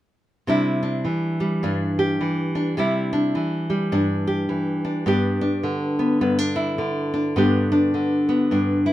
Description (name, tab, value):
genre	folk, solo fingerstyle acoustic guitar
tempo	104 BPM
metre	4/4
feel	swing 60% on 8ths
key	C major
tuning	A4 = 440 Hz
part	nylon-string guitar	solo	0.5-8.9 s	G2 to G4	-19 LUFS	equal	none
room	light reverb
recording	minimal, uncompressed stereo recording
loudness	-20 LUFS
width	side -14 dB against mid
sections	0.5-8.9 A section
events	none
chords	0.5 Cadd9; 5.1 G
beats	| 0.47 1.04 1.61 2.19 | 2.76 3.34 3.91 4.49 | 5.06 5.63 6.21 6.78 | 7.36 7.93 8.51